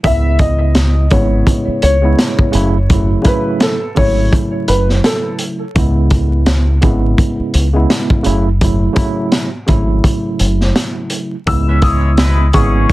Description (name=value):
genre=hip hop, boom-bap hip-hop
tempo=84 BPM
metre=4/4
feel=swing 57% on 16ths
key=C# minor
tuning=A4 = 440 Hz
part: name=dark upright piano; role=melody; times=0.0-5.4, 11.5-12.9 s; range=A4 to E6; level=-19 LUFS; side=left 1 dB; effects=high-pass filter, low-pass filter, tape echo
part: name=tine electric piano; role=accompaniment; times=0.0-12.9 s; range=C#3 to E4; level=-18 LUFS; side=right 2 dB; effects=overdrive, medium stereo tremolo, high-pass filter, low-pass filter
part: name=deep dub fingered electric bass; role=bass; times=0.0-12.8 s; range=F#1 to C#2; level=-13 LUFS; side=equal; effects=none
part: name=crunchy breakbeat drum kit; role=drums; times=0.0-12.9 s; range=hi-hat, kick drum, snare drum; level=-15 LUFS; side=equal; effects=none
part: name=clear trumpet section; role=stabs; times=11.7-12.9 s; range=G#3 to E5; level=-21 LUFS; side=left 2 dB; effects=high-pass filter, low-pass filter, tape echo
room=little or no reverb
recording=dense, heavily limited modern master, vinyl crackle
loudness=-11 LUFS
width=side -17 dB against mid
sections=0.0-11.5 A section; 11.5-12.9 B section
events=none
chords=0.0 C#m7; 2.5 F#m7; 5.8 C#m7; 8.3 F#m7; 11.5 C#m7